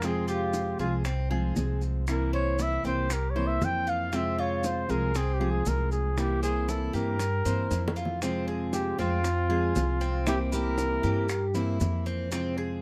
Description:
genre	latin, Cuban son and guajira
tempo	117 BPM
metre	4/4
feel	straight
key	F harmonic minor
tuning	A4 = 440 Hz
part	trumpet with bucket mute	melody	0.0-11.5 s	F4 to G5	-33 LUFS	equal	plate reverb
part	fingerpicked plugged-in steel-string acoustic guitar	accompaniment	0.0-12.8 s	C3 to F4	-34 LUFS	equal	none
part	Cuban tres	arpeggios	0.0-12.8 s	C4 to C5	-38 LUFS	equal	none
part	upright bass	bass	0.0-12.8 s	C2 to G2	-32 LUFS	equal	none
part	bongos	percussion	0.0-12.6 s	none	-38 LUFS	equal	none
part	maracas	percussion	0.0-12.6 s	none	-45 LUFS	equal	none
part	flamenco guitar	second line	8.7-11.5 s	C4 to G4	-40 LUFS	equal	none
room	light reverb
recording	dark, warm production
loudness	-28 LUFS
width	mono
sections	0.0-8.2 A section; 8.2-12.8 B section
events	muted trumpet solo 0.0-8.2; drum fill 7.7-8.2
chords	0.0 Fm; 2.1 C7; 4.1 Fm; 6.2 C7; 8.2 Fm; 10.3 C7

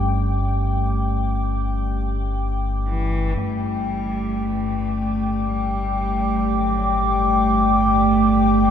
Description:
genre	dark ambient drone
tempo	free time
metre	none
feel	none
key	unclear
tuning	A4 = 439 Hz
part	dark analog pad	sustained chords	0.0-8.7 s	A3 to D6	-21 LUFS	equal	chorus, shimmer reverb
part	deep rumbling drone	drone	0.0-8.7 s	G1 to G2	-24 LUFS	equal	built-in reverb, lush chorus
part	bronze singing bowl	texture	0.0-8.7 s	G4 to G5	-37 LUFS	left 1 dB	shimmer reverb
part	clear cello	melody	2.9-8.7 s	E3 to A3	-27 LUFS	left 1 dB	shimmer reverb, analog delay
part	quartz singing bowl	arpeggios	3.4-8.7 s	A3	-32 LUFS	left 2 dB	shimmer reverb, analog delay
room	wet cathedral reverb, RT60 7.1 s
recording	dreamy mix soaked in reverb, cassette tape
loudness	-18 LUFS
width	side -8 dB against mid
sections	0.0-3.4 A section; 3.4-8.7 B section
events	fade-out on analog synth pad 0.0-3.4; fade-out on singing bowl 0.0-3.4; filter sweep on synth drone 3.4-8.7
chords	0.0 Gsus2

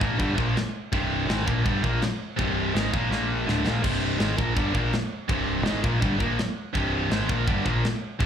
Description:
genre	heavy metal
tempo	165 BPM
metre	4/4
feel	straight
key	C minor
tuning	A4 = 440 Hz
part	high-gain distorted guitar	riff	0.0-8.3 s	C2 to Bb3	-25 LUFS	equal	distortion, slapback echo
part	growling picked electric bass	bass	0.0-8.3 s	C1 to Bb1	-28 LUFS	equal	overdrive
part	tight metal drum kit	drums	0.0-8.3 s	china cymbal, crash cymbal, kick drum, snare drum, splash cymbal	-28 LUFS	equal	none
room	small room ambience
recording	live gig heard through the venue's PA, club reverb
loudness	-23 LUFS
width	side -8 dB against mid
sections	0.0-8.3 A section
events	drum fill 3.1-3.8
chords	0.0 C5; 3.1 Bb5; 3.5 C5

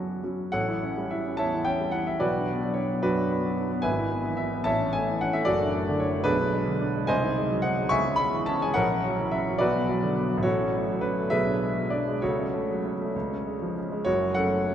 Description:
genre	classical, romantic character piece for solo piano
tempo	61-76 BPM (dotted quarters)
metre	6/8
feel	rubato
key	F# minor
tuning	A4 = 441 Hz
part	warm concert grand piano	solo	0.0-14.7 s	F#1 to C#6	-24 LUFS	equal	none
room	wet cathedral reverb, RT60 6.7 s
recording	in a vast, echoing space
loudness	-24 LUFS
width	side -9 dB against mid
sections	0.5-14.1 A section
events	none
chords	0.0 F#m; 0.5 A7; 2.2 Bm; 3.9 E/G#; 4.7 A; 5.5 D/F#; 6.3 G#dim/B; 7.1 G#7/B#; 7.9 C#m; 8.8 F#7/A#; 9.6 Bm; 10.4 F#m/A; 11.3 G#m7b5/B; 12.2 F#m/C#; 13.1 C#; 14.1 F#m

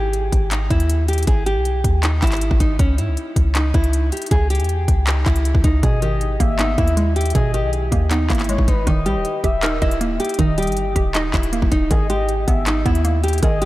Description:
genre	hip hop, trap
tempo	158 BPM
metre	4/4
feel	half-time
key	G# harmonic minor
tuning	A4 = 439 Hz
part	nylon-string guitar	melody	0.0-13.7 s	C#4 to G#4	-23 LUFS	right 1 dB	none
part	clean 808-style bass	bass	0.0-13.7 s	D#1 to G#2	-19 LUFS	equal	none
part	trap drum kit	drums	0.1-13.7 s	handclaps, hi-hat, kick drum	-20 LUFS	equal	none
part	gliding portamento lead	second line	5.8-13.7 s	B4 to E5	-27 LUFS	left 3 dB	chorus, tape echo
part	hollow square pluck	accompaniment	5.8-13.7 s	B2 to D#5	-24 LUFS	right 2 dB	chorus
room	light reverb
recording	none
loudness	-16 LUFS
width	side -17 dB against mid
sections	0.0-13.7 A section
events	none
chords	0.0 G#5; 2.8 C#m; 5.8 G#madd9; 8.9 D#; 11.9 G#madd9

